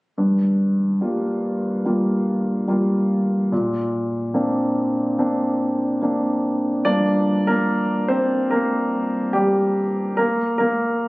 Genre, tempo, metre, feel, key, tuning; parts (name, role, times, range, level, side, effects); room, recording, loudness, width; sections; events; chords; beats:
pop; 72 BPM; 4/4; straight; G minor; A4 = 440 Hz
warm grand piano; accompaniment; 0.2-11.1 s; G2 to D5; -18 LUFS; equal
light reverb; recorded on a phone in the room, club reverb, compression; -18 LUFS; side -21 dB against mid
0.2-6.8 A section; 6.8-11.1 B section
grand piano solo 6.8-11.1
0.2 Gm7; 3.5 Bbadd9; 6.8 Gm7; 10.2 N.C.
| 0.18 1.01 1.85 2.68 | 3.51 4.35 5.18 6.01 | 6.85 7.68 8.51 9.35 | 10.18 11.01